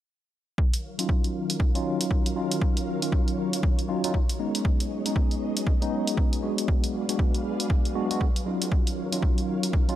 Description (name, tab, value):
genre	deep house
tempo	118 BPM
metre	4/4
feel	swing 60% on 16ths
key	Eb minor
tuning	A4 = 440 Hz
part	soft string machine	sustained chords	0.6-10.0 s	Eb3 to F5	-34 LUFS	equal	ensemble chorus, sidechain pumping
part	electronic kick drum	drums	0.6-9.9 s	none	-24 LUFS	equal	none
part	electronic hi-hat	drums	0.7-10.0 s	none	-32 LUFS	right 1 dB	none
part	bell-like tine electric piano	stabs	1.0-10.0 s	Gb3 to F#4	-28 LUFS	equal	medium stereo tremolo, sidechain pumping, low-pass filter, analog delay
room	light reverb, digital ambience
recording	none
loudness	-23 LUFS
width	side -12 dB against mid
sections	0.6-10.0 A section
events	none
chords	0.6 Ebm9; 4.4 B69; 6.7 Bm69/F#; 8.7 Ebm9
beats	| 0.58 1.09 1.60 2.11 | 2.62 3.12 3.63 4.14 | 4.65 5.16 5.67 6.17 | 6.68 7.19 7.70 8.21 | 8.72 9.23 9.73